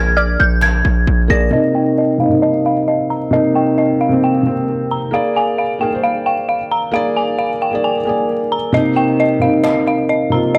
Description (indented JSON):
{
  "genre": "hip hop, trap",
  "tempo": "133 BPM",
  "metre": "4/4",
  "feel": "half-time",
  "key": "C minor",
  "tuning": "A4 = 440 Hz",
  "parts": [
    { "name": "dark detuned synth bell", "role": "melody", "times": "0.0-10.6 s", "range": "Eb5 to Bb6", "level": "-20 LUFS", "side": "equal", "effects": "chorus, low-pass filter, tape echo" },
    { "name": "felt-muted upright piano", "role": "accompaniment", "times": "0.0-10.6 s", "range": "C3 to F5", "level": "-18 LUFS", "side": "equal", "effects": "low-pass filter, tape echo" },
    { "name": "distorted 808-style bass", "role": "bass", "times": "0.0-1.5 s", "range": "Bb1", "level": "-17 LUFS", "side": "equal", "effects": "distortion" },
    { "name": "cajon", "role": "drums", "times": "0.1-10.6 s", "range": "none", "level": "-38 LUFS", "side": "equal", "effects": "tape echo" },
    { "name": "warbly dusty pluck", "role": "second line", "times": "0.2-0.6 s", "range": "D5", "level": "-25 LUFS", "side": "equal", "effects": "chorus, tape echo" }
  ],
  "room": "light reverb, small room ambience",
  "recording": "echo-heavy mix",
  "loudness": "-16 LUFS",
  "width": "mono",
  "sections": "0.0-1.5 A section; 1.5-8.7 B section; 8.7-10.6 C section",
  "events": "filter sweep 1.5-8.7; kick muted 8.7-10.6",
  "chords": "0.0 Bb7; 1.5 Cm7; 5.1 Bb7; 8.7 Cm7",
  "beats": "0.17 0.62 1.07 | 1.52 1.98 2.43 2.88 | 3.33 3.78 4.23 4.68 | 5.13 5.58 6.04 6.49 | 6.94 7.39 7.84 8.29 | 8.74 9.19 9.64 10.10 | 10.55"
}